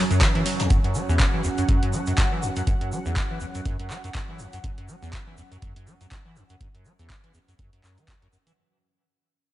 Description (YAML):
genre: acid house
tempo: 122 BPM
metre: 4/4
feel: swing 57% on 16ths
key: unclear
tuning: A4 = 441 Hz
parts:
  - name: lush unison pad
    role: sustained chords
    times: 0.0-8.6 s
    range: F#3 to F#5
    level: -31 LUFS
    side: right 2 dB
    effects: chorus, phaser, sidechain pumping
  - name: liquid acid bass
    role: riff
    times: 0.0-8.5 s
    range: E2 to F#3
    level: -27 LUFS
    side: equal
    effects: tube saturation, wide subtle chorus, dub echo
  - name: punchy analog drum machine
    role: drums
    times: 0.1-8.6 s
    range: handclaps, hi-hat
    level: -29 LUFS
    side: equal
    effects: overdrive
  - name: egg shaker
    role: percussion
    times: 0.1-8.6 s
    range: none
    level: -41 LUFS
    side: right 2 dB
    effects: none
  - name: electronic kick drum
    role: drums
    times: 0.2-8.2 s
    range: none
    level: -24 LUFS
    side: equal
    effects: none
  - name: jazz brush drum kit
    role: drums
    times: 0.2-0.7 s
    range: ride cymbal, snare drum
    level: -38 LUFS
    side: right 1 dB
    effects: none
room: light reverb, studio ambience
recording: nothing above 10.8 kHz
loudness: -21 LUFS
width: side -14 dB against mid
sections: 0.0-8.6 A section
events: fade-out 0.0-8.6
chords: 0.0 F#5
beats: 0.21 | 0.70 1.20 1.69 2.18 | 2.67 3.16 3.65 4.15 | 4.64 5.13 5.62 6.11 | 6.61 7.10 7.59 8.08